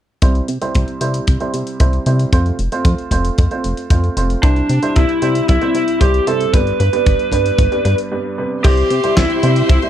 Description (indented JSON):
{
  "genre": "italo disco",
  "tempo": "114 BPM",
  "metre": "4/4",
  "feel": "straight",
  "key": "C major",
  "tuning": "A4 = 440 Hz",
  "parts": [
    { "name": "warm baby grand piano", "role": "stabs", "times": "0.2-9.9 s", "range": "G2 to C5", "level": "-21 LUFS", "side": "right 2 dB", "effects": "vintage 12-bit sampler grit, low-pass filter, tape echo" },
    { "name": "chorused synth bass", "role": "bass", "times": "0.2-9.8 s", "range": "F1 to C3", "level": "-17 LUFS", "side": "equal", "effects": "none" },
    { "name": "dusty soul sampler-style drum kit", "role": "drums", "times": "0.2-9.9 s", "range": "crash cymbal, hi-hat, snare drum", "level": "-27 LUFS", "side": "left 1 dB", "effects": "small room reverb" },
    { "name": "kick drum", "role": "drums", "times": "0.2-9.8 s", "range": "none", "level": "-14 LUFS", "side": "equal", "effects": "small room reverb" },
    { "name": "lead guitar through a small cranked amp", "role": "melody", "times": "4.4-9.8 s", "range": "D4 to B4", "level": "-17 LUFS", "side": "equal", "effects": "overdrive, tape echo" },
    { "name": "rich studio string section", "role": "sustained chords", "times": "8.6-9.9 s", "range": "G4 to C6", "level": "-22 LUFS", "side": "equal", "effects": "none" }
  ],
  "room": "small room ambience",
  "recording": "dry, close 1970s-style studio recording",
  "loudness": "-13 LUFS",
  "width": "side -11 dB against mid",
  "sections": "0.2-8.6 A section; 8.6-9.9 B section",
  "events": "break 8.1-8.6; filter sweep on grand piano 8.6-9.9",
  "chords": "0.2 C; 2.3 F; 4.4 C; 6.5 G; 8.6 C"
}